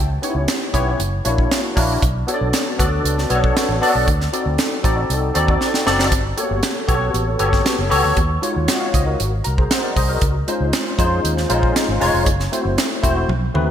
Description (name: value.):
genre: polished 1980s jazz-funk pop.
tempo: 117 BPM.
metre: 4/4.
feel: straight.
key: unclear.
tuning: A4 = 442 Hz.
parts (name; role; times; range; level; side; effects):
barky tine electric piano; accompaniment; 0.0-13.7 s; G#3 to A#5; -19 LUFS; left 1 dB; ensemble chorus.
vintage muted fingered electric bass; bass; 0.0-13.7 s; E1 to E#2; -21 LUFS; equal; none.
crisp fusion drum kit; drums; 0.2-13.7 s; hi-hat, kick drum, snare drum, toms; -20 LUFS; right 1 dB; gated reverb.
room: moderate lush hall reverb, RT60 2.1 s.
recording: bright 1980s-style digital production.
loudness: -16 LUFS.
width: side -9 dB against mid.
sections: 0.0-13.7 A section.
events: drum fill 5.6-6.1, 13.3-13.7; tine electric piano fill 9.2-10.2.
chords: 0.0 C#m7b5; 1.0 F#7b13; 2.0 Bm7; 4.1 D7b9; 6.1 Gmaj9#11; 8.2 D#m11; 9.2 G#; 10.2 C#maj9; 12.3 F#m7b5.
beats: 0.48 0.99 1.51 | 2.02 2.53 3.05 3.56 | 4.07 4.58 5.10 5.61 | 6.12 6.63 7.15 7.66 | 8.17 8.68 9.19 9.71 | 10.22 10.73 11.24 11.75 | 12.26 12.78 13.29.